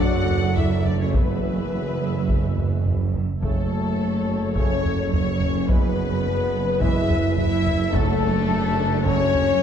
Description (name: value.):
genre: cinematic, epic orchestral film score.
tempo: 106 BPM.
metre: 4/4.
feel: straight.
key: unclear.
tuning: A4 = 439 Hz.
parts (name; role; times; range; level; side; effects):
rich symphonic violin section; melody; 0.0-9.6 s; A4 to F#5; -32 LUFS; left 6 dB; none.
rich symphonic violin section; second line; 0.0-9.6 s; A4 to F#5; -33 LUFS; left 5 dB; none.
silver concert flute; second line; 0.0-9.6 s; A4 to F#5; -33 LUFS; left 2 dB; none.
dark symphonic viola section; accompaniment; 0.0-9.6 s; D4 to E5; -33 LUFS; left 2 dB; none.
mellow French horn section; sustained chords; 0.0-9.6 s; A3 to F#4; -26 LUFS; left 4 dB; none.
warm trombone section; sustained chords; 0.0-9.2 s; C#3 to A3; -34 LUFS; right 2 dB; none.
mellow tuba; bass; 0.0-9.6 s; F#1; -30 LUFS; right 4 dB; none.
warm symphonic cello section; bass; 0.0-9.6 s; F#2; -27 LUFS; right 4 dB; none.
warm symphonic double bass section; bass; 0.0-9.6 s; F#1; -27 LUFS; right 5 dB; none.
taiko ensemble; drums; 0.3-9.6 s; none; -25 LUFS; equal; none.
timpani; percussion; 7.9-8.7 s; F#2; -31 LUFS; equal; none.
room: wet concert hall reverb, RT60 2.0 s.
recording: dark, warm production.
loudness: -19 LUFS.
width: side -8 dB against mid.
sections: 0.0-9.6 A section.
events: none.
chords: 0.0 D/F#; 1.1 E/F#; 3.4 F#m; 5.7 E/F#; 7.9 D/F#.